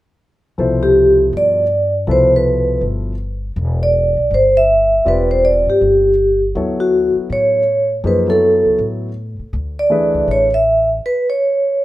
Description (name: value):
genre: jazz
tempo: 161 BPM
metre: 4/4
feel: swing 63% on 8ths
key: C major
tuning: A4 = 440 Hz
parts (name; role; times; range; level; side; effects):
- warm grand piano; accompaniment; 0.6-10.5 s; B2 to D5; -21 LUFS; left 2 dB; none
- upright bass; bass; 0.6-11.0 s; E1 to A2; -21 LUFS; left 1 dB; none
- vibraphone with medium mallets; melody; 0.8-11.8 s; F#4 to E5; -13 LUFS; right 1 dB; none
room: wet small room ambience, RT60 0.5 s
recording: rough home demo mix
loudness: -12 LUFS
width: side -16 dB against mid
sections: 0.6-11.8 A section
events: stop 11.0-11.8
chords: 0.6 Cmaj9; 6.6 Dmaj9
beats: | 0.59 0.96 1.33 1.70 | 2.08 2.45 2.82 3.19 | 3.57 3.94 4.31 4.69 | 5.06 5.43 5.80 6.18 | 6.55 6.92 7.30 7.67 | 8.04 8.41 8.79 9.16 | 9.53 9.91 10.28 10.65 | 11.02 11.40 11.77